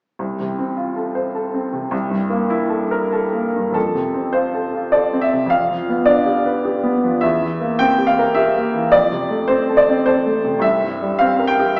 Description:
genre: classical, romantic character piece for solo piano.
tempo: 92-109 BPM.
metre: 3/4.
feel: rubato.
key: F major.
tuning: A4 = 440 Hz.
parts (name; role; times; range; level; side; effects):
clear upright piano; solo; 0.2-11.8 s; C2 to G5; -18 LUFS; equal; none.
room: wet recital hall reverb, RT60 1.5 s.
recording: heard from further back in the room, small speaker sound.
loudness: -18 LUFS.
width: mono.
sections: 0.2-3.8 A section; 3.8-11.8 B section.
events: none.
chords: 0.2 F/C; 1.9 C6; 3.8 F; 5.5 G7/F; 7.2 C7/E; 8.9 F; 10.6 C7.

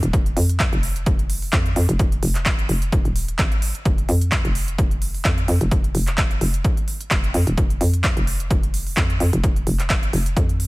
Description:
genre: bass house.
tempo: 129 BPM.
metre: 4/4.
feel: swing 55% on 16ths.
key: F minor.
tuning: A4 = 440 Hz.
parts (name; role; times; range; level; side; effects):
hollow knocking FM bass; bass; 0.0-10.7 s; Eb1 to F2; -21 LUFS; equal; overdrive, sidechain pumping.
big-room dance drum kit; drums; 0.0-10.7 s; handclaps, hi-hat; -26 LUFS; right 1 dB; overdrive.
electronic kick drum; drums; 0.1-10.5 s; none; -21 LUFS; equal; overdrive.
room: little or no reverb.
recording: none.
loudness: -18 LUFS.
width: side -21 dB against mid.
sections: 0.0-10.7 A section.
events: none.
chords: none.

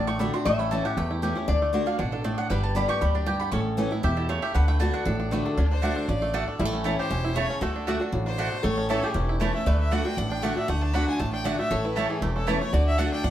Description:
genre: bluegrass.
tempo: 235 BPM.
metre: 4/4.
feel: straight.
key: D major.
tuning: A4 = 441 Hz.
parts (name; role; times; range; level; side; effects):
bluegrass banjo; melody; 0.0-13.3 s; D3 to G4; -32 LUFS; right 2 dB; slapback echo.
lap resonator guitar; second line; 0.0-13.3 s; D4 to E5; -32 LUFS; left 4 dB; none.
picked steel-string acoustic guitar; accompaniment; 0.0-13.3 s; E2 to G4; -29 LUFS; left 1 dB; none.
mandolin; stabs; 0.0-13.1 s; A3 to C#6; -32 LUFS; right 4 dB; none.
upright bass; bass; 0.0-13.3 s; E1 to E2; -27 LUFS; equal; none.
clear fiddle; melody; 5.7-13.3 s; G4 to B5; -31 LUFS; left 1 dB; none.
room: wet studio reverb, RT60 0.8 s.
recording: heard from further back in the room.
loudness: -23 LUFS.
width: side -12 dB against mid.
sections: 0.0-5.6 A section; 5.6-13.3 A section.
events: mandolin solo 0.0-5.6; fiddle solo 5.6-13.3.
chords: 0.5 A; 1.5 D; 2.5 G; 3.5 A; 4.5 D; 6.6 A; 7.6 D; 8.6 A; 9.7 D; 11.7 A; 12.7 D.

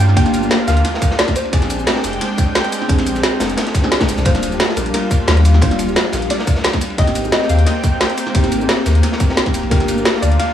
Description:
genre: liquid drum and bass.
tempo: 176 BPM.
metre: 4/4.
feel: swing 53% on 16ths.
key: Eb major.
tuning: A4 = 439 Hz.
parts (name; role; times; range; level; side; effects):
soft round pluck; melody; 0.0-2.0, 4.3-10.5 s; Bb4 to G5; -24 LUFS; equal; chorus, tape echo.
mellow FM electric piano; accompaniment; 0.0-10.5 s; G3 to Bb4; -21 LUFS; left 1 dB; chorus, phaser, tape echo.
lush unison pad; sustained chords; 0.0-10.5 s; G3 to G5; -23 LUFS; equal; chorus, vintage 12-bit sampler grit.
warm sub bass; bass; 0.0-10.4 s; Eb1 to G2; -16 LUFS; equal; none.
drum and bass drum kit; drums; 0.0-10.5 s; hi-hat, shaker, snare drum; -20 LUFS; equal; none.
crunchy breakbeat drum kit; drums; 0.2-10.5 s; ride cymbal, snare drum; -24 LUFS; equal; high-pass filter on cymbals, high-pass filter on snare, high-pass filter on room.
electronic kick drum; drums; 0.2-9.8 s; none; -16 LUFS; equal; none.
room: light reverb, digital ambience.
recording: studio ambience.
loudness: -13 LUFS.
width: side -10 dB against mid.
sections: 0.0-10.5 A section.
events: none.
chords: 0.0 Gm7; 1.5 Bb13; 4.3 Ebmaj7; 7.0 Abmaj7; 9.7 Gm7.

